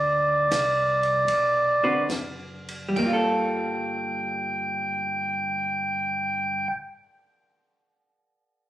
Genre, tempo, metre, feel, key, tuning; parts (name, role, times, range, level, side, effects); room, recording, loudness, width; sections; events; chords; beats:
soul jazz organ trio; 66-83 BPM; 4/4; swing 68% on 8ths; G minor; A4 = 440 Hz
percussive tonewheel organ; melody; 0.0-6.7 s; D5 to G5; -24 LUFS; right 1 dB; overdrive, stopped rotary speaker
mellow tonewheel organ; bass; 0.0-6.7 s; F#1 to D2; -37 LUFS; left 1 dB; slow rotary speaker
compact cocktail drum kit; drums; 0.5-3.2 s; crash cymbal, hi-hat, kick drum, ride cymbal, snare drum; -34 LUFS; equal
vintage hollow-body jazz guitar; accompaniment; 1.8-6.9 s; D3 to B4; -26 LUFS; equal
moderate large studio reverb, RT60 1.3 s; recorded on a phone in the room, club reverb; -22 LUFS; side -13 dB against mid
0.0-3.0 A section; 3.0-6.6 B section
slowing down 0.0-3.0
0.0 D6; 3.0 Gm9
0.50 1.27 2.08 | 2.96 3.87 4.79 5.70